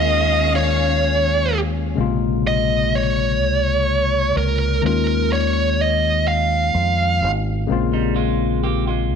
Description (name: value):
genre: R&B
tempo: 42 BPM (dotted quarters)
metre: 6/8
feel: straight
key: Bb minor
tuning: A4 = 440 Hz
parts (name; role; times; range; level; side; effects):
- high-gain lead guitar; melody; 0.0-7.3 s; Bb4 to F5; -19 LUFS; right 2 dB; distortion, slapback echo
- barky tine electric piano; accompaniment; 0.0-9.2 s; C3 to F4; -22 LUFS; left 10 dB; phaser
- warm symphonic string section; sustained chords; 0.0-1.9 s; Eb3 to F5; -27 LUFS; left 2 dB; none
- deep dub fingered electric bass; bass; 0.0-9.2 s; Ab1 to F2; -22 LUFS; right 2 dB; none
- clean electric guitar; second line; 7.9-9.2 s; G3 to G4; -26 LUFS; right 12 dB; none
room: light reverb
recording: 1960s-style stereo with parts hard left and right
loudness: -16 LUFS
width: side -7 dB against mid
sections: 0.0-2.0 A section; 2.0-9.2 B section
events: none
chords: 0.0 Eb9sus4; 2.0 Bbm7; 4.8 Eb9sus4; 7.7 Bbm7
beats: 0.54 | 1.97 3.40 | 4.83 6.26 | 7.69 9.12